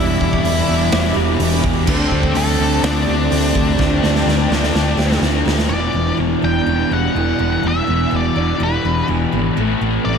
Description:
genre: rock, shoegaze and dream pop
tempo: 125 BPM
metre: 4/4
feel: straight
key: E minor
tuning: A4 = 440 Hz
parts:
  - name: octave-fuzz lead guitar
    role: melody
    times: 0.0-10.2 s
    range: C4 to G5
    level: -23 LUFS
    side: left 3 dB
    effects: distortion, tape echo
  - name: hollow soft pad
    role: sustained chords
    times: 0.0-5.7 s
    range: G3 to D6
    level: -27 LUFS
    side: right 4 dB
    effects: chorus
  - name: picked twelve-string acoustic guitar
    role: arpeggios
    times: 0.0-10.2 s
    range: A3 to G4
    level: -28 LUFS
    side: right 9 dB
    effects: ensemble chorus, tape echo
  - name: electric guitar through a small old amp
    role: riff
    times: 0.0-10.2 s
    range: E2 to G4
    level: -25 LUFS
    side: right 13 dB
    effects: reverse reverb
  - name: raw garage guitar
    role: riff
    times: 0.0-10.2 s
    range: E2 to D4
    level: -23 LUFS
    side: right 2 dB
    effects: overdrive
  - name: thick fuzz guitar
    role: riff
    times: 0.0-10.2 s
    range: E2 to D4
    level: -21 LUFS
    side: left 11 dB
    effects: distortion, analog chorus
  - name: hollow-body short-scale fingered electric bass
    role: bass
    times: 0.0-10.2 s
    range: E1 to D2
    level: -20 LUFS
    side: equal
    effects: none
  - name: raw garage drum kit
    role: drums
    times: 0.2-5.7 s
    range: crash cymbal, hi-hat, kick drum, snare drum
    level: -21 LUFS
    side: right 1 dB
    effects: none
room: small room ambience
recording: none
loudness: -14 LUFS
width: side -6 dB against mid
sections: 0.0-5.7 A section; 5.7-10.2 B section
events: drum fill 3.8-5.7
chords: 0.0 Em7; 1.9 D7sus4; 5.7 Em7; 9.6 Amadd9

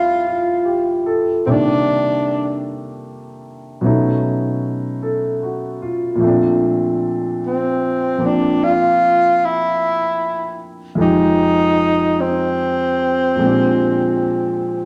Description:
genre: jazz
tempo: 50 BPM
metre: 4/4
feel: swing 67% on 8ths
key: F major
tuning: A4 = 440 Hz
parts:
  - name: breathy tenor saxophone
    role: melody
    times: 0.0-14.9 s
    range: C4 to F4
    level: -19 LUFS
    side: equal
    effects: none
  - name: warm concert grand piano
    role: accompaniment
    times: 0.0-14.9 s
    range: F2 to E5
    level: -20 LUFS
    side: equal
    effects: none
room: wet large studio reverb, RT60 1.2 s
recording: none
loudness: -17 LUFS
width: mono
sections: 0.0-14.9 A section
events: none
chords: 0.0 F69; 1.5 Cm9; 3.8 B9; 6.2 Bbmaj9; 11.0 Fm7; 13.4 Bb13

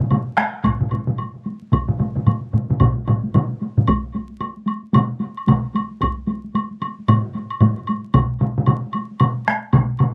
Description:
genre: japanese traditional, taiko drum ensemble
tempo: 112 BPM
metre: 4/4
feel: swing 60% on 16ths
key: none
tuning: none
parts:
  - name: solo taiko drums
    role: percussion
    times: 0.0-10.1 s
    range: none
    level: -21 LUFS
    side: equal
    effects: none
  - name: taiko ensemble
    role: percussion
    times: 0.0-9.9 s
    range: none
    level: -26 LUFS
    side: equal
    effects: slapback echo
  - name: taiko ensemble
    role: percussion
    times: 0.0-7.8 s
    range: none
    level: -23 LUFS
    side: equal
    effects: none
  - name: woodblock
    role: percussion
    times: 0.1-10.1 s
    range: none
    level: -28 LUFS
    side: equal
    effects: slapback echo
  - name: solo taiko drums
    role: percussion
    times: 0.6-9.9 s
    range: none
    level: -27 LUFS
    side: equal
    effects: none
room: light reverb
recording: recorded outdoors, with no room sound, vinyl crackle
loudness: -20 LUFS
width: mono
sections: 0.0-3.9 A section; 3.9-10.1 B section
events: none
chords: none

